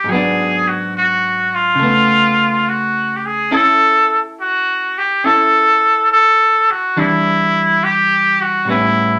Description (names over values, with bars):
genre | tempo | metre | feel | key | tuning
jazz | 70 BPM | 4/4 | swing 67% on 8ths | unclear | A4 = 441 Hz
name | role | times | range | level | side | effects
trumpet with straight mute | melody | 0.0-9.2 s | E4 to A4 | -15 LUFS | equal | none
vintage hollow-body jazz guitar | accompaniment | 0.0-9.2 s | G#2 to A4 | -22 LUFS | equal | none
room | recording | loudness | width
wet small room ambience, RT60 0.5 s | none | -14 LUFS | mono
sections
0.0-9.2 A section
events
none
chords
0.1 G#m7b5; 1.8 C#7b13; 3.5 A6/C#; 7.0 Em7; 8.7 A9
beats
| 0.07 0.93 1.79 2.65 | 3.51 4.37 5.24 6.09 | 6.95 7.81 8.66